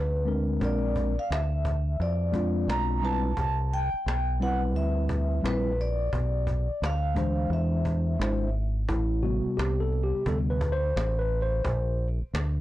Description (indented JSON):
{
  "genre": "hip hop, jazz-hop",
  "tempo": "87 BPM",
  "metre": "4/4",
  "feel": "swing 64% on 16ths",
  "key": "unclear",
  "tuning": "A4 = 440 Hz",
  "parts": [
    { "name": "vibraphone with soft mallets", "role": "melody", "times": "0.0-8.5 s", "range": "B4 to Bb5", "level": "-32 LUFS", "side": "equal", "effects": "plate reverb" },
    { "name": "deep dub fingered electric bass", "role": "bass", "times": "0.0-12.6 s", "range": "G#1 to F2", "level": "-27 LUFS", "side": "equal", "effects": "none" },
    { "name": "mellow tine electric piano", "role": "accompaniment", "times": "0.3-12.1 s", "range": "C3 to C5", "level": "-29 LUFS", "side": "left 1 dB", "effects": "medium stereo tremolo, plate reverb" },
    { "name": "cajon", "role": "drums", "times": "0.3-12.5 s", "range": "none", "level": "-35 LUFS", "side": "equal", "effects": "none" }
  ],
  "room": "light reverb",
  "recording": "blown-out, overdriven recording, overdrive",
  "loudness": "-25 LUFS",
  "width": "side -15 dB against mid",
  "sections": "0.0-8.9 A section; 8.9-12.6 B section",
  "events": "tine electric piano solo 8.9-12.6",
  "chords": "0.0 Amadd9 (rootless); 0.6 Bb9; 3.4 Cmaj7; 6.1 Bdim; 7.5 Eaug7; 8.9 Am9; 11.6 Bbadd9",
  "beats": "| 0.61 1.30 1.99 2.68 | 3.37 4.06 4.75 5.44 | 6.13 6.82 7.51 8.20 | 8.89 9.58 10.27 10.96 | 11.65 12.34"
}